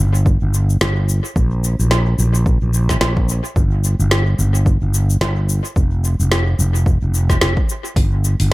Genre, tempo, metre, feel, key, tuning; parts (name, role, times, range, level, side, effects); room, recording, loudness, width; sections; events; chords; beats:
organic downtempo; 109 BPM; 4/4; swing 57% on 16ths; G minor pentatonic; A4 = 439 Hz
fretless electric bass; bass; 0.0-8.5 s; F1 to Bb1; -15 LUFS; equal
deep house drum kit; drums; 0.1-8.5 s; hi-hat, shaker, snare drum; -21 LUFS; equal; dub echo
electronic kick drum; drums; 0.3-8.1 s; -17 LUFS; equal
little or no reverb; echo-heavy mix; -14 LUFS; side -20 dB against mid
0.0-8.5 A section
0.26 0.81 | 1.36 1.91 2.46 3.01 | 3.56 4.11 4.66 5.21 | 5.76 6.31 6.87 7.42 | 7.96 8.52